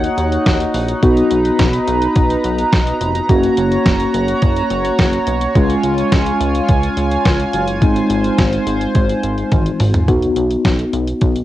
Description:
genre	synth-pop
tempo	106 BPM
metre	4/4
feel	straight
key	unclear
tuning	A4 = 441 Hz
part	mellow tine electric piano	accompaniment	0.0-11.4 s	Ab3 to Gb4	-18 LUFS	left 1 dB	medium stereo tremolo, cassette tape
part	chorused pulse-width pad	sustained chords	0.0-10.1 s	Eb4 to Bb5	-19 LUFS	right 1 dB	cassette tape
part	chorused synth bass	bass	0.0-11.4 s	F1 to Eb2	-20 LUFS	equal	none
part	detuned 8-bit digital drum machine	drums	0.0-11.4 s	hi-hat, kick drum, snare drum, toms	-16 LUFS	equal	cassette tape
room	light reverb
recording	home recording on cassette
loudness	-13 LUFS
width	side -14 dB against mid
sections	0.0-10.1 A section; 10.1-11.4 B section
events	drum fill 9.5-10.1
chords	0.0 Ebm7; 1.0 Cbmaj7; 3.3 Gb; 5.6 Db; 7.8 Ab6; 10.1 Cb

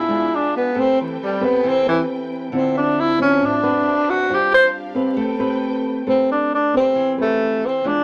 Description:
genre	bossa nova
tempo	136 BPM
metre	4/4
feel	straight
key	A minor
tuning	A4 = 442 Hz
part	breathy tenor saxophone	melody	0.0-8.0 s	E3 to C5	-19 LUFS	equal	none
part	nylon-string guitar	accompaniment	0.0-8.0 s	A2 to C5	-25 LUFS	equal	none
part	warm symphonic violin section	sustained chords	0.0-6.1 s	C4 to G5	-32 LUFS	equal	none
room	moderate studio ambience, RT60 0.5 s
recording	vinyl crackle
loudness	-19 LUFS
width	mono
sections	0.0-6.1 A section; 6.1-8.0 B section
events	tenor saxophone solo 0.0-6.1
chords	0.0 E7b9; 0.8 Am9; 2.5 Dm9; 3.9 D13; 4.3 G7sus4; 5.2 Am9

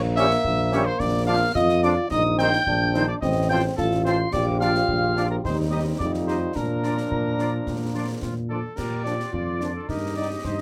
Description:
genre	military-style march for wind band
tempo	108 BPM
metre	2/4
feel	straight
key	Bb major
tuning	A4 = 440 Hz
part	warm euphonium	second line	0.0-10.6 s	Bb3 to G4	-30 LUFS	equal	none
part	mellow tuba	bass	0.0-10.6 s	A1 to Bb2	-29 LUFS	equal	none
part	clear cornet	melody	0.2-10.6 s	F4 to G5	-30 LUFS	equal	none
part	clear woodwind section	second line	0.2-10.6 s	Eb4 to Eb5	-36 LUFS	equal	none
part	piccolo	second line	0.2-8.2 s	A5 to G6	-31 LUFS	equal	none
part	clear French horn section	accompaniment	0.2-10.3 s	F3 to F4	-32 LUFS	equal	none
part	warm trombone section	sustained chords	0.2-10.3 s	Eb3 to Eb4	-32 LUFS	equal	none
part	concert snare drum, concert bass drum and clash cymbals	drums	0.2-10.6 s	none	-37 LUFS	equal	none
room	light reverb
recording	none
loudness	-23 LUFS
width	mono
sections	0.0-8.8 A section; 8.8-10.6 A section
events	none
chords	0.0 Bbdim7; 1.0 Bb; 2.1 Cm7/Bb; 3.2 F/A; 4.3 Bb; 5.4 Cm/Eb; 6.0 F9; 6.6 Bb; 9.9 Eb/G

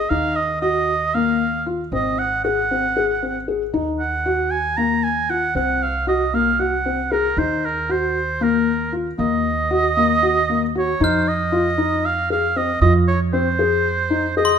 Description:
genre	contemporary instrumental, chamber music in an uneven meter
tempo	231 BPM (eighths)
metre	7/8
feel	straight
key	Eb dorian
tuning	A4 = 440 Hz
part	clear oboe	melody	0.0-14.6 s	Bb4 to Bb5	-20 LUFS	right 4 dB	none
part	upright bass	bass	0.0-14.6 s	Ab1 to F2	-25 LUFS	right 3 dB	none
part	felt-muted upright piano	arpeggios	0.1-14.5 s	Bb3 to Ab4	-21 LUFS	left 4 dB	none
part	glockenspiel with brass mallets	texture	11.0-14.6 s	C6 to F6	-26 LUFS	left 6 dB	none
room	moderate recital hall reverb, RT60 1.6 s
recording	minimal, uncompressed stereo recording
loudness	-17 LUFS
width	side -7 dB against mid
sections	0.0-11.0 A section; 11.0-14.6 B section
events	none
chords	0.1 Ebmadd9; 1.9 Ab7; 3.7 Ebm; 5.6 C(b5, no3); 7.4 Ebm; 11.0 Fm7

